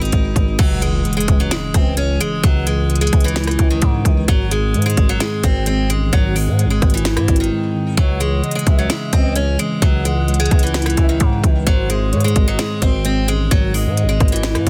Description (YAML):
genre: hip hop, trap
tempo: 130 BPM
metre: 4/4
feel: half-time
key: C# harmonic minor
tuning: A4 = 441 Hz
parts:
  - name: picked steel-string acoustic guitar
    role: melody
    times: 0.0-14.7 s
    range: D#3 to D#4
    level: -24 LUFS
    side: equal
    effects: delay
  - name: mellow tine electric piano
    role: accompaniment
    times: 0.0-14.7 s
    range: G#2 to C#4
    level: -24 LUFS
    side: equal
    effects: subtle chorus
  - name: growling 808-style bass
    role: bass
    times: 0.0-14.7 s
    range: G#1 to G#2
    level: -22 LUFS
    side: equal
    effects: none
  - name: trap drum kit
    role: drums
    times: 0.1-14.7 s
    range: crash cymbal, hi-hat, kick drum, rim click, snare drum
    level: -19 LUFS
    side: equal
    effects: none
  - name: impact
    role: sound effects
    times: 0.7-2.4 s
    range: none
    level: -28 LUFS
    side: equal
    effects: none
  - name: breathy flute-like synth lead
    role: second line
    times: 8.0-14.7 s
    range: B#4 to F#5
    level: -31 LUFS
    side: equal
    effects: chorus, delay
room: little or no reverb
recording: dense, heavily limited modern master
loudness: -16 LUFS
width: mono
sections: 0.6-14.7 A section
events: impact 0.6-2.4; break 7.5-8.0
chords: 0.0 G#; 0.6 C#m; 4.3 G#; 8.0 C#madd9; 11.7 G#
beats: 0.13 | 0.59 1.05 1.51 1.97 | 2.44 2.90 3.36 3.82 | 4.28 4.74 5.21 5.67 | 6.13 6.59 7.05 7.51 | 7.97 8.44 8.90 9.36 | 9.82 10.28 10.74 11.21 | 11.67 12.13 12.59 13.05 | 13.51 13.97 14.44